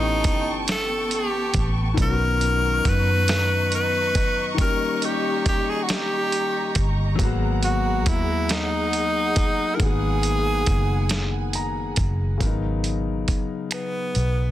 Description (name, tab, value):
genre	slow six-eight R&B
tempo	46 BPM (dotted quarters)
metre	6/8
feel	straight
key	G# minor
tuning	A4 = 440 Hz
part	breathy tenor saxophone	melody	0.0-14.5 s	B3 to B4	-24 LUFS	equal	plate reverb
part	clear concert grand piano	accompaniment	0.0-14.5 s	C#3 to A#5	-28 LUFS	left 6 dB	plate reverb
part	dark studio string section	sustained chords	0.0-12.4 s	B3 to C#6	-31 LUFS	right 1 dB	plate reverb
part	vintage muted fingered electric bass	bass	0.0-14.5 s	F#1 to F#2	-24 LUFS	equal	none
part	dusty soul sampler-style drum kit	drums	0.2-14.3 s	finger snaps, hi-hat, kick drum, snare drum	-24 LUFS	right 1 dB	soft clipping on snare
room	light reverb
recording	dense, heavily limited modern master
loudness	-20 LUFS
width	side -13 dB against mid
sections	0.0-12.4 A section; 12.4-14.5 B section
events	grand piano fill 11.1-12.4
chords	0.0 A9; 2.0 Bmaj9; 4.6 D#7; 7.2 G#m9; 12.4 G#m11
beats	0.67 | 1.97 3.28 | 4.58 5.89 | 7.19 8.49 | 9.80 11.10 | 12.41 13.71